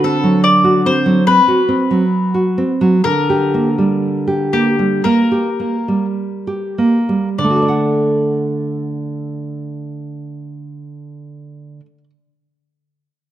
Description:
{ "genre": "romantic duo for mandolin and classical guitar", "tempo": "46-74 BPM", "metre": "4/4", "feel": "rubato", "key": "D major", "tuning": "A4 = 440 Hz", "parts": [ { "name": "mandolin", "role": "melody", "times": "0.0-11.8 s", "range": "G4 to D5", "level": "-18 LUFS", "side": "left 3 dB", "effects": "none" }, { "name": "nylon-string guitar", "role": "accompaniment", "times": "0.0-12.1 s", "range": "D3 to F#5", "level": "-15 LUFS", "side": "right 1 dB", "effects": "none" } ], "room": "moderate recital hall reverb, RT60 1.7 s", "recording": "dark, warm production", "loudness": "-13 LUFS", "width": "side -12 dB against mid", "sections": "0.0-7.4 A section; 7.4-11.9 B section", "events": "slowing down 0.0-7.4", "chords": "0.0 D7; 3.0 Gm/D; 7.4 D" }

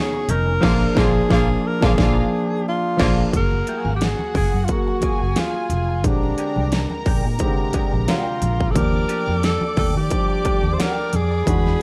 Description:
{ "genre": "lush 1970s-style soul", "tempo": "88 BPM", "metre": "4/4", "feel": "swing 54% on 16ths", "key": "unclear", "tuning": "A4 = 440 Hz", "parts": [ { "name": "breathy tenor saxophone", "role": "melody", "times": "0.0-11.8 s", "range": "D4 to C5", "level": "-27 LUFS", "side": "equal", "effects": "none" }, { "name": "rich studio violin section", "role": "second line", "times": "0.0-11.8 s", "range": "F4 to D6", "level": "-34 LUFS", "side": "equal", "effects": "none" }, { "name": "dark grand piano", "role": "accompaniment", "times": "0.0-11.8 s", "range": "B2 to A#4", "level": "-27 LUFS", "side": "equal", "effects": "none" }, { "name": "warm horn section", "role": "stabs", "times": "0.0-3.2 s", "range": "A#2 to F4", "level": "-33 LUFS", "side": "equal", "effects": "none" }, { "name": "electric guitar through a small old amp", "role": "riff", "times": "0.1-11.3 s", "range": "Ab3 to A#4", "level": "-34 LUFS", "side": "equal", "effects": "wah" }, { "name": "congas", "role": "percussion", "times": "0.1-11.8 s", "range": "none", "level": "-33 LUFS", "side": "equal", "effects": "none" }, { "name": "vintage muted fingered electric bass", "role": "bass", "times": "0.3-11.8 s", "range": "F1 to Eb3", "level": "-24 LUFS", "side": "equal", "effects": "none" }, { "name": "big-room dance drum kit", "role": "drums", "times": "0.3-11.7 s", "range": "crash cymbal, hi-hat, kick drum, snare drum", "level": "-24 LUFS", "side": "equal", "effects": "none" } ], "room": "studio reverb", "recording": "dark, warm production", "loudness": "-20 LUFS", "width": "mono", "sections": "0.0-3.3 A section; 3.3-11.8 B section", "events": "band accent 0.6-3.3", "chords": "0.0 Bmaj9; 0.6 Bb7; 3.3 Gbmaj9; 6.0 Bb13; 8.8 Ebmaj9#11" }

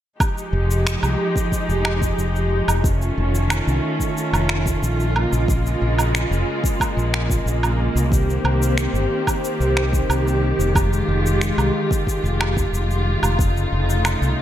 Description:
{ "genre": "sunset chillout", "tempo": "91 BPM", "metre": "4/4", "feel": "straight", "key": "F minor", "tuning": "A4 = 440 Hz", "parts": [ { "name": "rich studio string section", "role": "sustained chords", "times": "0.2-14.4 s", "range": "Db3 to G4", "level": "-22 LUFS", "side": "equal", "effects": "vintage 12-bit sampler grit" }, { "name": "electronic kick drum", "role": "drums", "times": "0.2-13.5 s", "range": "none", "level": "-22 LUFS", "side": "equal", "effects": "small room ambience" }, { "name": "electronic woodblock, cabasa and finger snaps", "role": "drums", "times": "0.2-14.4 s", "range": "none", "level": "-26 LUFS", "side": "right 2 dB", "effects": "small room ambience" }, { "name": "mellow fretless electric bass", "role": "bass", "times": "0.5-14.3 s", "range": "F1 to C2", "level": "-20 LUFS", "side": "equal", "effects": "tube saturation" } ], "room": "moderate lush hall reverb, RT60 1.6 s, digital ambience", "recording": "dreamy mix soaked in reverb", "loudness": "-18 LUFS", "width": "side -11 dB against mid", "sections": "0.2-14.4 A section", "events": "none", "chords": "0.2 Fm9; 2.8 F7b13; 5.2 Bbm7; 8.1 Cm7; 10.8 Fm9; 13.4 F7b13" }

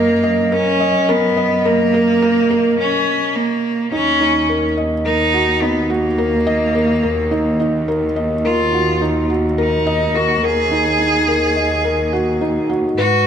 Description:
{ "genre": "piano and strings electronica", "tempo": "106 BPM", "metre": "4/4", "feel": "straight", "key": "Eb minor", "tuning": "A4 = 441 Hz", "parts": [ { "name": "rich cello", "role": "melody", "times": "0.0-13.3 s", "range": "Bb3 to Ab4", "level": "-17 LUFS", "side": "right 1 dB", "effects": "none" }, { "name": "felt-muted upright piano", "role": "riff", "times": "0.0-13.1 s", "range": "Eb4 to Eb5", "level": "-18 LUFS", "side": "left 1 dB", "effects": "none" }, { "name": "dark chamber cello section", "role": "bass", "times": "0.0-13.3 s", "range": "Eb2 to Ab2", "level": "-22 LUFS", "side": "right 1 dB", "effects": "none" } ], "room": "wet echo chamber reverb, RT60 1.6 s, small room ambience", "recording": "none", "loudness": "-14 LUFS", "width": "side -8 dB against mid", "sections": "0.0-3.9 A section; 3.9-13.3 B section", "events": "build-up 0.0-3.9; break 2.8-3.9; drop 3.9-13.3", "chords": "0.0 Gb; 3.9 Ebm" }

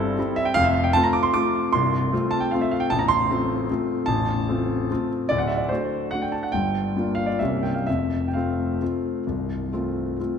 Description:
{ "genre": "classical, piano waltz", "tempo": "125-163 BPM", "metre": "3/4", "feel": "rubato", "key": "F major", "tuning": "A4 = 440 Hz", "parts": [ { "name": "clear grand piano", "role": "solo", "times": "0.0-10.4 s", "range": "A0 to D6", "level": "-21 LUFS", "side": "equal", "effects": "none" } ], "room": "wet concert hall reverb, RT60 2.5 s", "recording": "none", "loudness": "-21 LUFS", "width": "side -7 dB against mid", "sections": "0.0-10.4 A section", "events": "none", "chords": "0.0 C; 0.6 F; 2.9 F/A; 5.3 D7; 6.5 Gm7; 7.4 C7b9; 7.9 F" }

